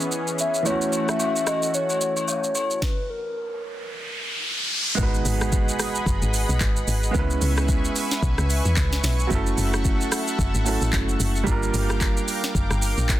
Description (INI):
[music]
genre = amapiano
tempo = 111 BPM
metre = 4/4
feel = swing 58% on 16ths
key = G# phrygian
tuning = A4 = 440 Hz
[part]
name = warm concert grand piano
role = accompaniment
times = 0.0-13.2 s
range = E3 to B4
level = -28 LUFS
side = right 3 dB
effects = none
[part]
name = lush unison pad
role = sustained chords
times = 0.0-13.2 s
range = E3 to D6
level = -31 LUFS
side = left 1 dB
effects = chorus, sidechain pumping
[part]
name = afro-pop drum kit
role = drums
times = 0.0-13.2 s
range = handclaps, hi-hat, kick drum, rim click, shaker, snare drum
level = -25 LUFS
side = equal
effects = none
[part]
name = hollow clarinet-like synth lead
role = melody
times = 0.4-3.6 s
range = A#4 to E5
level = -26 LUFS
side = left 2 dB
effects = chorus, tape echo
[part]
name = agogo bells and woodblock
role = percussion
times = 0.7-2.7 s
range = none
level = -32 LUFS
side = left 4 dB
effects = none
[part]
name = riser and impact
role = sound effects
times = 3.7-7.1 s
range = none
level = -28 LUFS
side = left 1 dB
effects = none
[part]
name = deep log drum bass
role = bass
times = 5.0-13.2 s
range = F#1 to E2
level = -23 LUFS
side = equal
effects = none
[sound]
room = digital ambience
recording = dense, heavily limited modern master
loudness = -21 LUFS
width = side -14 dB against mid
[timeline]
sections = 0.0-5.0 A section; 5.0-13.2 B section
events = stop 2.8-5.0; riser 3.7-5.0; drop 5.0-13.2; impact 5.0-7.1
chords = 0.0 C#m7; 0.7 F#m7; 2.8 N.C.; 5.0 G#m7; 7.1 C#m7; 9.3 F#m7; 11.5 Gm7